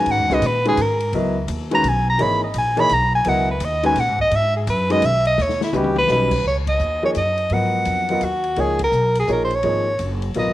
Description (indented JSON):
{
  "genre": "modal jazz",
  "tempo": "169 BPM",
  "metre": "3/4",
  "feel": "swing 65% on 8ths",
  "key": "C# dorian, G# dorian from 6.4 s",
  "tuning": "A4 = 440 Hz",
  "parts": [
    { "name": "warm soprano saxophone", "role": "melody", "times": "0.0-10.5 s", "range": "E4 to B5", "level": "-19 LUFS", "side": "equal", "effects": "none" },
    { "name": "clear upright piano", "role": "accompaniment", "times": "0.0-10.5 s", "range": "D#3 to D#5", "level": "-23 LUFS", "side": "left 1 dB", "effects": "none" },
    { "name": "upright bass", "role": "bass", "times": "0.0-10.5 s", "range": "F#1 to A#2", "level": "-24 LUFS", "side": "equal", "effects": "none" },
    { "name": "open jazz drum kit", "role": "drums", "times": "0.1-10.5 s", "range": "crash cymbal, hi-hat, kick drum, ride cymbal, snare drum, toms", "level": "-32 LUFS", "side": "left 5 dB", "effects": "none" }
  ],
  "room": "light reverb, small room ambience",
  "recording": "1960s-style stereo",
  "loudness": "-17 LUFS",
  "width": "side -14 dB against mid",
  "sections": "0.0-6.4 A section; 6.4-10.5 B section",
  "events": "soprano saxophone solo 0.0-6.4; drum fill 5.4-6.1; band accent 6.6, 8.8",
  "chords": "0.0 C#m11; 5.4 D#7alt; 6.4 G#9sus4"
}